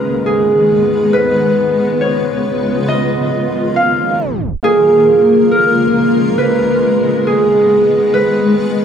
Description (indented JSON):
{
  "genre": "hip hop",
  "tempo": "137 BPM",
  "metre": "4/4",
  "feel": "half-time",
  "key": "G# dorian",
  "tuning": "A4 = 441 Hz",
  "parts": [
    { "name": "concert harp", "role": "melody", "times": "0.0-8.8 s", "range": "G#4 to E#5", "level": "-13 LUFS", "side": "right 2 dB", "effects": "dub echo" },
    { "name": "granular cloud pad", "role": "sustained chords", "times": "0.0-8.8 s", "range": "C#3 to B4", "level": "-15 LUFS", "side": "left 2 dB", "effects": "built-in reverb" }
  ],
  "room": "wet echo chamber reverb, RT60 1.6 s, studio reverb",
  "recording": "echo-heavy mix, tape stop",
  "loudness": "-10 LUFS",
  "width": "side -8 dB against mid",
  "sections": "0.0-4.6 A section; 4.6-8.8 B section",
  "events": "tape stop 4.2-4.6",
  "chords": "0.0 G#m; 1.1 C#7; 2.9 D#madd9; 4.6 A#m7; 6.4 G#m; 8.1 C#7",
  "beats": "0.26 0.69 | 1.13 1.57 2.01 2.45 | 2.88 3.32 3.76 4.20 | 4.64 5.08 5.51 5.95 | 6.39 6.83 7.26 7.70 | 8.14 8.58"
}